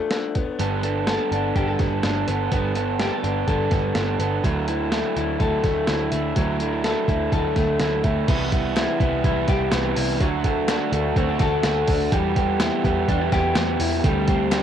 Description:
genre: jangly indie pop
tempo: 125 BPM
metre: 4/4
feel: straight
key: G major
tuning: A4 = 441 Hz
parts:
  - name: electric guitar through a small old amp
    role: arpeggios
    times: 0.0-14.6 s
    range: F3 to A4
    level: -25 LUFS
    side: left 7 dB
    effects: tape echo
  - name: boom bap sampler-style drum kit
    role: drums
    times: 0.1-14.6 s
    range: crash cymbal, hi-hat, kick drum, snare drum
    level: -24 LUFS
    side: equal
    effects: cassette tape
  - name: crunchy overdriven guitar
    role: accompaniment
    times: 0.6-14.6 s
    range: E2 to A4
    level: -25 LUFS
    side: right 11 dB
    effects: none
  - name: vintage muted picked electric bass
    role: bass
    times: 0.6-14.6 s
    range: G1 to E2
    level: -27 LUFS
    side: equal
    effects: none
  - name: group handclap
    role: percussion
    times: 8.8-14.6 s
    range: none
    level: -37 LUFS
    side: left 11 dB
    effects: none
room: light reverb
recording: home recording on cassette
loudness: -19 LUFS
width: side -9 dB against mid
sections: 0.0-8.3 A section; 8.3-14.6 B section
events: none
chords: 0.4 Gadd9; 4.4 Dadd9; 8.3 Cmaj7; 10.2 D; 12.1 Em; 14.0 D7sus4

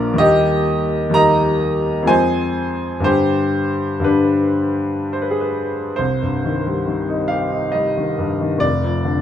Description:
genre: classical, romantic nocturne for solo piano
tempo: 59-71 BPM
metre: 3/4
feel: rubato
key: C minor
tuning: A4 = 440 Hz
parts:
  - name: clear baby grand piano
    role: solo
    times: 0.0-9.2 s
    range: F1 to C6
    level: -16 LUFS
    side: left 1 dB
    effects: none
room: moderate recital hall reverb, RT60 1.3 s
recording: close, detailed microphones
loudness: -16 LUFS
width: side -10 dB against mid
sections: 0.0-6.0 A section; 6.0-9.2 B section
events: none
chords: 0.2 Eb; 2.1 Fm; 3.1 G; 6.0 Cm; 8.6 Dm/F

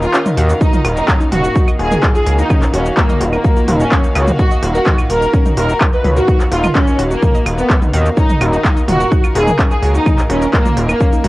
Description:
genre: melodic techno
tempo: 127 BPM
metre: 4/4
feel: straight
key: Eb minor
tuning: A4 = 442 Hz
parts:
  - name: mellow synth brass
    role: melody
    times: 0.0-11.2 s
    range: Bb3 to Cb5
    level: -20 LUFS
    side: equal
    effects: chorus, phaser, sidechain pumping, cassette tape, tape echo
  - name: clear chamber violin section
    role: second line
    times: 0.0-11.2 s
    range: Bb3 to Cb5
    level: -22 LUFS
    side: equal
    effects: sidechain pumping, cassette tape, tape echo
  - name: warm studio string section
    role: sustained chords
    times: 0.0-11.3 s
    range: Eb3 to F5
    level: -24 LUFS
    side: equal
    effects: sidechain pumping, cassette tape
  - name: wide unison pluck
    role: arpeggios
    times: 0.0-11.3 s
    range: Db4 to Eb5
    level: -24 LUFS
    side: equal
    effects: vintage 12-bit sampler grit, sidechain pumping, cassette tape, tape echo
  - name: gritty driven synth bass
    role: bass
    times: 0.0-11.3 s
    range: Eb1 to Eb2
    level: -15 LUFS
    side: equal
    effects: sidechain pumping
  - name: techno drum kit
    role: drums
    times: 0.0-11.3 s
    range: claves, handclaps, hi-hat, shaker, toms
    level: -19 LUFS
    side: equal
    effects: overdrive, sidechain pumping on perc, cassette tape, sidechain pumping on toms, sidechain pumping on hats
  - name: electronic kick drum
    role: drums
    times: 0.6-11.1 s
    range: none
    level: -13 LUFS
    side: equal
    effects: overdrive, cassette tape
room: light reverb, digital ambience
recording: home recording on cassette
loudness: -11 LUFS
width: side -19 dB against mid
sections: 0.0-11.3 A section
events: kick drops out 0.1-0.6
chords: 0.0 Ebmadd9

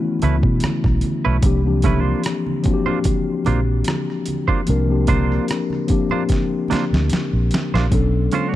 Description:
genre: R&B, neo-soul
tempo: 74 BPM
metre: 4/4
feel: swing 53% on 16ths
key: unclear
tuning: A4 = 440 Hz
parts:
  - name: mellow tine electric piano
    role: accompaniment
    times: 0.0-8.6 s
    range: D#3 to Bb4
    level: -21 LUFS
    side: left 4 dB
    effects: none
  - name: semi-hollow electric guitar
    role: second line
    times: 0.2-8.6 s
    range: A3 to C#5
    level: -25 LUFS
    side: right 7 dB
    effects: vibrato effect
  - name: vintage muted fingered electric bass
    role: bass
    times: 0.2-8.3 s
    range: Bb1 to B2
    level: -18 LUFS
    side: right 1 dB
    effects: none
  - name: boom bap sampler-style drum kit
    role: drums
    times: 0.2-8.5 s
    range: hi-hat, kick drum, rim click, snare drum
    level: -21 LUFS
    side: right 1 dB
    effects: overdrive
  - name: congas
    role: percussion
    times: 0.2-8.5 s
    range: none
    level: -30 LUFS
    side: right 6 dB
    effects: none
room: digital ambience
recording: dry, close 1970s-style studio recording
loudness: -16 LUFS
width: side -14 dB against mid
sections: 0.0-7.9 A section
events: drum fill 6.3-7.9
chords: 0.0 B9sus4; 1.4 C9sus4; 7.9 Bm9

